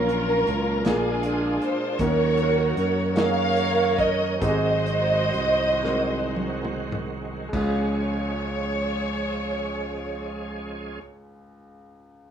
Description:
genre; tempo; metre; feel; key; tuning
slow gospel; 32-53 BPM (dotted quarters); 6/8; straight; Db major; A4 = 443 Hz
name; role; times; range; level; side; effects
dark studio string section; melody; 0.0-11.0 s; Db4 to F5; -24 LUFS; right 1 dB; none
clear baby grand piano; accompaniment; 0.0-12.3 s; Db2 to Bb4; -31 LUFS; left 3 dB; none
bright tonewheel organ; sustained chords; 0.0-11.0 s; Eb3 to Db5; -32 LUFS; right 5 dB; fast rotary speaker, overdrive, chorus vibrato
fingered electric bass; bass; 0.0-11.0 s; Ab1 to Gb2; -28 LUFS; right 1 dB; none
warm soul drum kit; drums; 0.1-7.8 s; crash cymbal, hi-hat, kick drum, snare drum, toms; -30 LUFS; right 1 dB; none
room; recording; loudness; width
light reverb; rough home demo mix, small room ambience; -22 LUFS; side -8 dB against mid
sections
0.0-7.5 A section; 7.5-11.3 B section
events
slowing down 2.0-7.5; drum fill 5.8-7.5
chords
0.0 Gbmaj7/Bb; 0.9 Bb7; 2.0 Ebm7; 4.4 Ab7; 7.5 Db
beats
0.85 | 2.00 3.16 | 4.42 5.83 | 7.54 9.43

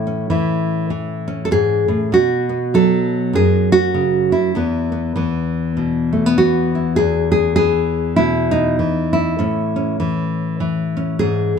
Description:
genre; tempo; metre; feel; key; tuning
folk, solo fingerstyle acoustic guitar; 99 BPM; 4/4; swing 60% on 8ths; E major; A4 = 440 Hz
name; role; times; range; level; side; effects
nylon-string guitar; solo; 0.0-11.6 s; E2 to A4; -15 LUFS; equal; none
room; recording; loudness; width
moderate studio reverb, RT60 0.9 s; none; -15 LUFS; side -6 dB against mid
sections
0.0-7.0 A section; 7.0-11.6 A section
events
none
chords
0.0 A; 2.1 B5; 4.6 E5; 7.0 E; 9.4 A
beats
0.30 0.91 1.52 | 2.12 2.73 3.34 3.95 | 4.55 5.16 5.76 6.37 | 6.98 7.58 8.19 8.79 | 9.39 10.00 10.60 11.21

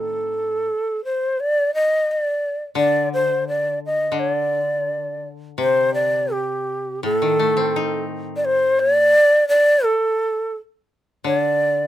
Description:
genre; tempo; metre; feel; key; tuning
japanese traditional, Japanese chamber music; 81-90 BPM; 2/4; rubato; D in sen; A4 = 440 Hz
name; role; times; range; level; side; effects
breathy shakuhachi; melody; 0.0-11.9 s; G4 to Eb5; -18 LUFS; equal; none
koto; accompaniment; 0.0-11.9 s; A2 to Eb4; -26 LUFS; left 4 dB; none
room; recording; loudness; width
little or no reverb; close, detailed microphones; -17 LUFS; side -13 dB against mid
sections
0.0-5.6 A section; 5.6-11.9 B section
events
none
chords
none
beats
0.67 | 1.40 2.10 | 2.79 3.46 | 4.15 4.87 | 5.60 6.34 | 7.05 7.74 | 8.42 9.11 | 9.80 10.52 | 11.26

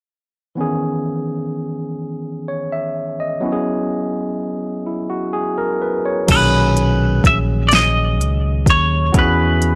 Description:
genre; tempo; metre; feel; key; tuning
slow six-eight R&B; 42 BPM (dotted quarters); 6/8; straight; C# dorian; A4 = 440 Hz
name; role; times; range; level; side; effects
barky tine electric piano; accompaniment; 0.6-9.8 s; A#2 to E5; -22 LUFS; equal; none
semi-hollow electric guitar; melody; 6.3-9.8 s; B4 to E5; -20 LUFS; equal; none
fingered electric bass; bass; 6.3-9.8 s; A#1 to E2; -20 LUFS; equal; tube saturation
smooth R&B drum kit; drums; 6.3-9.8 s; crash cymbal, hi-hat, kick drum, snare drum; -19 LUFS; equal; none
room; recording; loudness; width
little or no reverb; dry, gritty hardware recording, lossy compression artefacts; -18 LUFS; mono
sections
0.6-6.3 A section; 6.3-9.8 B section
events
none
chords
0.6 C#m9; 3.4 E69; 6.3 Bmaj13; 9.1 E6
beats
| 0.57 2.00 | 3.43 4.86 | 6.29 7.71 | 9.14

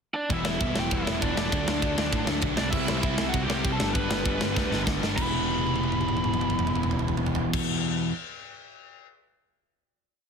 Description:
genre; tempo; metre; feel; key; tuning
punk rock; 197 BPM; 4/4; straight; E minor; A4 = 440 Hz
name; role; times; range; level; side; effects
biting lead guitar; melody; 0.1-7.6 s; D4 to B5; -31 LUFS; right 2 dB; overdrive, tape echo
overdriven electric guitar; riff; 0.3-8.1 s; E2 to D4; -31 LUFS; left 13 dB; none
overdriven semi-hollow guitar; riff; 0.3-8.1 s; G2 to B4; -35 LUFS; equal; none
sludgy distorted guitar; riff; 0.3-8.1 s; G2 to G4; -32 LUFS; right 14 dB; overdrive
growling picked electric bass; bass; 0.3-7.6 s; E1 to A2; -33 LUFS; equal; overdrive
tight metal drum kit; drums; 0.3-9.1 s; crash cymbal, kick drum, ride cymbal, snare drum, toms; -29 LUFS; equal; none
room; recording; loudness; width
light reverb; dense, heavily limited modern master; -24 LUFS; side -6 dB against mid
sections
0.0-0.3 pickup bar; 0.3-5.2 riff; 5.2-7.6 final chord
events
drum fill 4.6-5.2, 5.3-7.5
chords
0.3 Em; 1.5 D; 2.6 C; 3.8 G; 5.2 Em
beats
| 0.30 0.60 0.91 1.21 | 1.52 1.82 2.12 2.43 | 2.73 3.04 3.34 3.65 | 3.95 4.25 4.56 4.86 | 5.17 5.47 5.78 6.08 | 6.39 6.69 7.00 7.30

